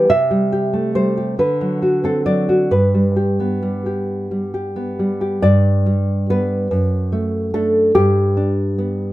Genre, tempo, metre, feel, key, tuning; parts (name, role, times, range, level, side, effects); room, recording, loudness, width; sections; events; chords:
romantic piece for solo classical guitar; 43-49 BPM (dotted quarters); 6/8; rubato; G major; A4 = 440 Hz
nylon-string guitar; solo; 0.0-9.1 s; F#2 to E5; -15 LUFS; equal
light reverb; -15 LUFS; side -16 dB against mid
0.0-5.4 A section; 5.4-9.1 A section
0.1 Am7/C; 1.4 D7; 2.7 G; 6.7 D/F#; 7.9 G